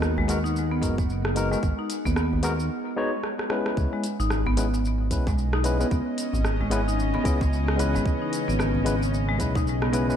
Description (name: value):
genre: organic downtempo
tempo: 112 BPM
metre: 4/4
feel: swing 59% on 16ths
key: unclear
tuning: A4 = 440 Hz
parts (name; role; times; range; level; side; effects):
- barky tine electric piano; accompaniment; 0.0-10.2 s; E3 to D#5; -30 LUFS; left 3 dB; overdrive, vintage 12-bit sampler grit, sidechain pumping, ping-pong delay
- bowed-like drone; sustained chords; 0.0-10.2 s; C#3 to F#5; -33 LUFS; left 1 dB; built-in reverb, sidechain pumping
- smooth gliding synth bass; bass; 0.0-10.1 s; F#1 to D#2; -26 LUFS; equal; tube saturation, sidechain pumping
- organic electronic drum kit; drums; 0.0-10.2 s; hi-hat, rim click, shaker; -33 LUFS; equal; none
- djembe; percussion; 0.0-9.6 s; none; -33 LUFS; left 1 dB; none
- marimba with medium hard mallets; arpeggios; 0.2-10.2 s; G#3 to D#4; -30 LUFS; right 1 dB; ping-pong delay
- electronic kick drum; drums; 0.8-9.6 s; none; -26 LUFS; equal; none
room: moderate echo chamber reverb, RT60 1.6 s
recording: dark, warm production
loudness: -22 LUFS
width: side -9 dB against mid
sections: 0.0-3.8 A section; 3.8-10.2 B section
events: break 2.7-3.8; drum fill 3.2-3.8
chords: 0.0 G#m9; 3.8 C#m7